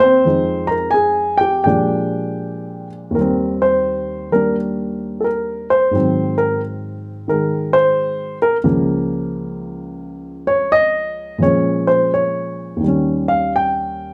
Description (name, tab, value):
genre	solo jazz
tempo	86 BPM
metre	4/4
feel	swing 66% on 8ths, rubato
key	Eb major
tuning	A4 = 439 Hz
part	dark baby grand piano	solo	0.0-14.1 s	Db2 to Bb5	-18 LUFS	equal	none
room	moderate club reverb, RT60 0.7 s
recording	none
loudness	-18 LUFS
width	mono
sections	0.0-3.1 A section; 3.1-14.1 B section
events	grand piano solo 3.1-14.1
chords	0.2 Fm7; 1.7 Bb7; 3.1 Eb6; 5.9 Ab7; 8.6 Db6; 11.4 Bbm7; 12.8 Eb7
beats	| 0.25 0.94 1.66 2.41 | 3.15 3.86 4.56 5.25 | 5.93 6.61 7.29 7.97 | 8.65 9.33 10.03 10.72 | 11.41 12.11 12.81 13.53